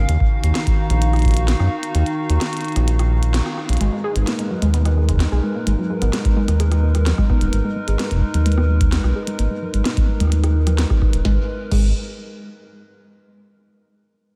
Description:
IDM; 129 BPM; 4/4; straight; G# dorian; A4 = 438 Hz
warbly tape-like pad; sustained chords; 0.0-11.5 s; D#3 to E#5; -28 LUFS; equal; chorus, built-in reverb
round analog bass; bass; 0.0-11.9 s; D#1 to F#2; -19 LUFS; equal
glitchy drum kit; drums; 0.1-11.8 s; crash cymbal, hi-hat, rim click, snare drum; -31 LUFS; equal; diffuse ambient delay
electronic kick drum; drums; 0.2-1.3, 5.1-11.8 s; -21 LUFS; equal
warbly dusty pluck; arpeggios; 3.8-11.9 s; F#3 to G#4; -28 LUFS; equal; chorus, diffuse ambient delay
light reverb; -19 LUFS; mono
0.0-3.8 A section; 3.8-11.2 B section; 11.2-13.1 C section
kick drops out 1.9-3.8; band accent 3.3; filter sweep on analog synth bass 3.8-11.2; filter sweep on synth pluck 3.8-11.2
0.1 D#madd9; 3.8 G#madd9; 11.2 N.C.
| 0.09 0.55 1.02 1.48 | 1.95 2.41 2.88 3.34 | 3.81 4.27 4.74 5.20 | 5.67 6.13 6.60 7.06 | 7.53 8.00 8.46 8.93 | 9.39 9.86 10.32 10.79 | 11.25 11.72

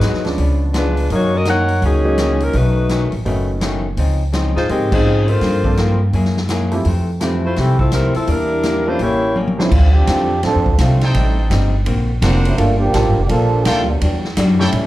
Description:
jazz, big band swing; 167 BPM; 4/4; swing 64% on 8ths; A4 = 439 Hz
mellow saxophone section; melody; 0.0-9.4 s; Eb3 to Gb5; -18 LUFS; left 1 dB
archtop guitar, miked and amplified; accompaniment; 0.0-14.9 s; F2 to A4; -24 LUFS; left 4 dB; slapback echo
upright bass; bass; 0.0-14.9 s; E#1 to A2; -16 LUFS; equal
swinging big-band drum kit; drums; 0.0-14.8 s; crash cymbal, hi-hat, kick drum, ride cymbal, snare drum, toms; -23 LUFS; equal
clear upright piano; accompaniment; 0.2-9.7, 12.2-14.9 s; Db3 to C5; -23 LUFS; right 2 dB; slapback echo
warm trombone section; second line; 9.6-14.2 s; F3 to A4; -19 LUFS; right 3 dB
brilliant trumpet section; stabs; 11.0-14.7 s; D4 to G5; -23 LUFS; right 1 dB; slapback echo
light reverb; live gig heard through the venue's PA, club reverb; -14 LUFS; side -16 dB against mid
0.0-9.7 A section; 9.7-14.9 B section
band accent 4.9; drum fill 9.4-9.7; trombone section solo 9.7-14.9
0.4 Db7b9; 1.1 Gb6; 2.5 B9; 4.0 Dbmaj9; 5.4 Gm11; 6.1 Gb9; 6.8 Fmaj7; 8.3 Em7b5; 9.0 A7b9; 9.7 Dm7; 11.2 Am7b5; 11.9 D7alt; 12.6 Gm9; 14.0 Em9
0.02 0.38 0.74 | 1.10 1.46 1.82 2.18 | 2.54 2.90 3.25 3.62 | 3.97 4.33 4.69 5.05 | 5.41 5.77 6.13 6.49 | 6.85 7.21 7.57 7.92 | 8.28 8.64 9.00 9.36 | 9.72 10.08 10.44 10.79 | 11.15 11.51 11.87 12.22 | 12.58 12.94 13.30 13.66 | 14.02 14.37 14.73

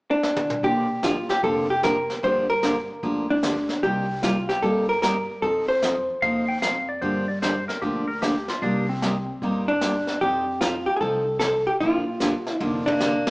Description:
country, western swing; 150 BPM; 4/4; swing 65% on 8ths; Bb major; A4 = 440 Hz
vintage hollow-body jazz guitar; melody; 0.1-6.8, 9.7-13.3 s; D4 to C5; -22 LUFS; equal
vintage brush drum kit; drums; 0.2-13.3 s; brushed snare drum, hi-hat, kick drum, snare drum, toms; -30 LUFS; equal
picked steel-string acoustic guitar; accompaniment; 0.6-13.1 s; C3 to A4; -27 LUFS; equal
upright bass; bass; 0.6-13.2 s; F1 to G2; -32 LUFS; equal
clean lap steel guitar; second line; 6.2-9.5 s; C4 to G5; -27 LUFS; left 1 dB
clear fiddle; second line; 12.9-13.3 s; Bb3; -27 LUFS; equal
moderate large studio reverb, RT60 1.4 s; band playing live in one room, small speaker sound; -21 LUFS; side -28 dB against mid
0.6-13.3 A section
drum fill 0.2-0.6, 12.6-13.3
0.0 N.C.; 0.6 Bb6; 2.2 Gm7; 3.8 Cm7; 5.4 F7; 7.0 Gm7; 8.6 Cm7; 10.2 F9; 11.8 Bb6
0.23 | 0.64 1.03 1.43 1.83 | 2.23 2.63 3.03 3.43 | 3.83 4.23 4.63 5.03 | 5.43 5.83 6.23 6.63 | 7.03 7.42 7.82 8.22 | 8.62 9.02 9.42 9.82 | 10.22 10.62 11.01 11.41 | 11.81 12.21 12.61 13.01

